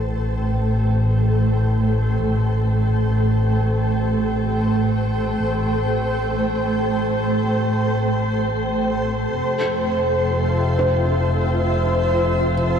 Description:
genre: ambient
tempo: free time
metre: none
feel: none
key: A minor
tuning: A4 = 435 Hz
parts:
  - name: granular cloud pad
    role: sustained chords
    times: 0.0-12.8 s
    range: A3 to A5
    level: -21 LUFS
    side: right 1 dB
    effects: built-in reverb
  - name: dark chamber double bass section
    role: bass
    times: 0.0-12.8 s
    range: F1 to A1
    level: -21 LUFS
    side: equal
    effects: none
  - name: felt-muted upright piano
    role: arpeggios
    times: 10.8-12.8 s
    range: C5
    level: -26 LUFS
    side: equal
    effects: tape echo
room: wet shimmer reverb, RT60 7.5 s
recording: dark, warm production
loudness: -18 LUFS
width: side -8 dB against mid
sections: 0.0-12.8 A section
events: fade-in on ambient pad 0.0-12.8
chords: 0.0 Am7; 9.4 Fmaj7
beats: free time

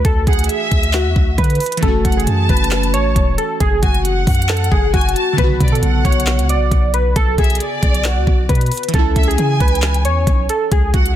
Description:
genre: hip hop, trap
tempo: 135 BPM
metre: 4/4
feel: half-time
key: F# minor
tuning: A4 = 439 Hz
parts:
  - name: warbly lo-fi synth keys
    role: melody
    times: 0.0-11.2 s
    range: F#4 to D5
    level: -20 LUFS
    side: equal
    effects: chorus, tape echo
  - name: glassy digital keys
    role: accompaniment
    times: 0.0-11.2 s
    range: C#3 to F#4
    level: -25 LUFS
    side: right 2 dB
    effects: chorus
  - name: long sustained 808-style bass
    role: bass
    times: 0.0-11.2 s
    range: E1 to D3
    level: -17 LUFS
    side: equal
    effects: none
  - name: trap drum kit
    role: drums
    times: 0.0-11.2 s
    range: handclaps, hi-hat, kick drum, snare drum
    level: -16 LUFS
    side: equal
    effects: none
  - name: warm studio violin section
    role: second line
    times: 0.3-11.2 s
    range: D5 to A5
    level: -23 LUFS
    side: equal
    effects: tape echo
room: digital ambience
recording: dense, heavily limited modern master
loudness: -13 LUFS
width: side -11 dB against mid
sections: 0.0-11.2 A section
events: none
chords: 0.0 Dadd9; 1.8 F#m7; 5.4 Bmadd9; 8.9 C#m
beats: | 0.05 0.49 0.94 1.38 | 1.83 2.27 2.71 3.16 | 3.60 4.05 4.49 4.94 | 5.38 5.83 6.27 6.71 | 7.16 7.60 8.05 8.49 | 8.94 9.38 9.83 10.27 | 10.71

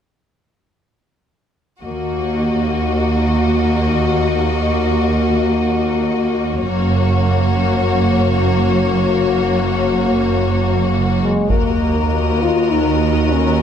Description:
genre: cinematic, epic orchestral film score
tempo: free time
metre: none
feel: none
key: Eb minor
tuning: A4 = 437 Hz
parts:
  - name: warm symphonic violin section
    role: melody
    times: 1.8-13.6 s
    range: Db5 to Eb5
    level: -25 LUFS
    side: left 5 dB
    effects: none
  - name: clear symphonic violin section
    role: second line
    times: 1.8-13.6 s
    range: Gb4 to Bb4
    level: -24 LUFS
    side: left 4 dB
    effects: none
  - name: rich symphonic viola section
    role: accompaniment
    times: 1.8-13.6 s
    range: Bb3 to Gb4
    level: -23 LUFS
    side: right 2 dB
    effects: none
  - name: mellow French horn section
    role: sustained chords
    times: 1.8-13.6 s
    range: Ab3 to Gb4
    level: -20 LUFS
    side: left 6 dB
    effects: none
  - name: rich studio double bass section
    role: bass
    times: 1.8-13.6 s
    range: Gb1 to Eb2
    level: -20 LUFS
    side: right 3 dB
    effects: none
  - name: warm symphonic cello section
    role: bass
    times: 1.8-13.6 s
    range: Eb2 to Gb2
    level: -21 LUFS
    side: right 3 dB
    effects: none
  - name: solo taiko drums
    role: drums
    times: 11.5-12.7 s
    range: none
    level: -22 LUFS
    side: equal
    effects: none
room: light reverb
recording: dark, warm production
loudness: -14 LUFS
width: side -8 dB against mid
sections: 1.8-11.5 A section; 11.5-13.6 B section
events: none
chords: 1.8 Ebm; 6.7 Gb; 11.5 Ebm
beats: free time

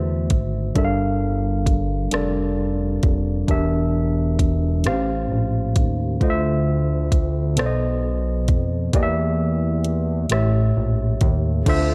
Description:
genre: slow six-eight R&B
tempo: 44 BPM (dotted quarters)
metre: 6/8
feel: straight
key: unclear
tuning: A4 = 436 Hz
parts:
  - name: barky tine electric piano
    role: accompaniment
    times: 0.0-11.9 s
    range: A2 to F5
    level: -25 LUFS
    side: equal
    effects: none
  - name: fat analog bass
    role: bass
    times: 0.0-11.9 s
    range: E1 to F2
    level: -25 LUFS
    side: equal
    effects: none
  - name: smooth R&B drum kit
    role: drums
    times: 0.3-11.9 s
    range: crash cymbal, hi-hat, kick drum, rim click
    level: -23 LUFS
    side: equal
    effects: none
  - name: dark studio string section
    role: sustained chords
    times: 11.7-11.9 s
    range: A3 to A4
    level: -32 LUFS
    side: equal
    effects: none
room: light reverb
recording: dark, warm production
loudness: -21 LUFS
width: mono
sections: 0.0-11.7 A section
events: none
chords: 0.0 D7; 0.8 Gm7; 3.5 Em7b5; 4.8 A7alt; 6.2 Dm9; 7.6 B7b9; 8.9 Em7b5; 10.3 A7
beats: | 0.76 2.12 | 3.48 4.85 | 6.21 7.57 | 8.94 10.30 | 11.66

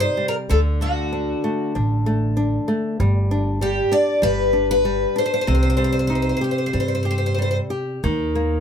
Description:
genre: fado-style ballad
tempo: 96 BPM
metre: 4/4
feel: rubato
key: C minor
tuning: A4 = 440 Hz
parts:
  - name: picked twelve-string acoustic guitar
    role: melody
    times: 0.0-7.6 s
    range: F#4 to D5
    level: -21 LUFS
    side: left 1 dB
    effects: none
  - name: flamenco guitar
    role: accompaniment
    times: 0.0-8.6 s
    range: C3 to G4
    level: -23 LUFS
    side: left 1 dB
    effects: none
  - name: upright bass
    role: bass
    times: 0.0-8.6 s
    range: G1 to G2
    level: -21 LUFS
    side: right 1 dB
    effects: none
room: light reverb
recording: none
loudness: -18 LUFS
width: side -8 dB against mid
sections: 0.0-8.0 A section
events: none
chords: 0.0 Cm; 0.5 D; 3.0 G5; 5.5 Cm; 8.0 Eb5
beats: | 0.50 1.13 1.76 2.38 | 3.00 3.61 4.22 4.85 | 5.47 6.10 6.74 7.39 | 8.04

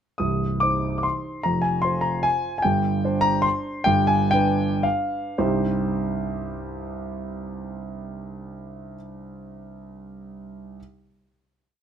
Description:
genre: classical, piano waltz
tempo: 103-156 BPM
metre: 3/4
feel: rubato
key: C minor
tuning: A4 = 441 Hz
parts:
  - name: warm concert grand piano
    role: solo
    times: 0.2-10.8 s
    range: C1 to Eb6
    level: -22 LUFS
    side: equal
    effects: none
room: light reverb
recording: close, detailed microphones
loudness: -21 LUFS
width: side -8 dB against mid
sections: 0.2-5.4 A section; 5.4-8.5 final chord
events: slowing down 2.0-5.4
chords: 0.2 Cm; 1.4 F5; 2.6 Gsus4; 3.9 G7; 5.4 Cm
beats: | 0.20 0.62 1.04 | 1.45 1.84 2.25 | 2.65 3.04 3.44 | 3.87 4.33 4.85 | 5.40 5.90 6.43 | 6.95 7.46 8.00

